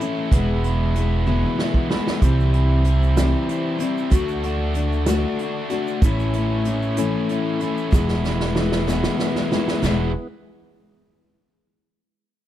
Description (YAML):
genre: folk rock and heartland rock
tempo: 63 BPM (dotted quarters)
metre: 6/8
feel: straight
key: E mixolydian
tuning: A4 = 441 Hz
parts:
  - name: picked steel-string acoustic guitar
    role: accompaniment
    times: 0.0-10.1 s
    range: E2 to F#4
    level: -24 LUFS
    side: left 4 dB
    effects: none
  - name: tonewheel organ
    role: sustained chords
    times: 0.0-10.3 s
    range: B3 to D5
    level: -34 LUFS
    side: right 1 dB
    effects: slow rotary speaker, overdrive
  - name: biting overdriven guitar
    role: riff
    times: 0.0-10.1 s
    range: E2 to F#4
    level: -27 LUFS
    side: right 2 dB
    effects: none
  - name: unplugged drum kit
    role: drums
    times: 0.0-10.0 s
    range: china cymbal, hi-hat, kick drum, snare drum, toms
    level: -22 LUFS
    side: right 1 dB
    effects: none
  - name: upright bass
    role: bass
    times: 0.3-10.1 s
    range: E1 to D2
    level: -21 LUFS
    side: right 1 dB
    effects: none
  - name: egg shaker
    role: percussion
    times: 2.2-10.1 s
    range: none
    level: -43 LUFS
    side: right 16 dB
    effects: none
room: little or no reverb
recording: none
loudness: -18 LUFS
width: side -12 dB against mid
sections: 0.0-9.8 A section; 9.8-11.7 B section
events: drum fill 1.3-2.2, 7.9-9.8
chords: 0.3 E; 2.2 C; 4.1 D; 6.0 A; 7.9 E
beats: | 0.32 1.27 | 2.22 3.18 | 4.13 5.08 | 6.03 6.98 | 7.93 8.89 | 9.84